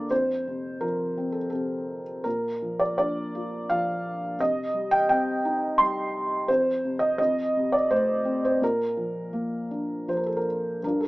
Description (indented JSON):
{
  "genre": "classical, lyrical solo piano",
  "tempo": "84 BPM",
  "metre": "3/4",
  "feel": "rubato",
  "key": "Bb major",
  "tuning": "A4 = 439 Hz",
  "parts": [
    { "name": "felt-muted upright piano", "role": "solo", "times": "0.0-11.1 s", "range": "F2 to C6", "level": "-24 LUFS", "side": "equal", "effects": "none" }
  ],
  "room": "moderate studio reverb, RT60 0.6 s",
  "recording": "small speaker sound",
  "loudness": "-24 LUFS",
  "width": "side -20 dB against mid",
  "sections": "0.0-10.8 A section",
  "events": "none",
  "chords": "0.1 F5; 2.3 Bb; 4.4 Cm; 6.5 F5; 7.2 F; 8.6 Bb"
}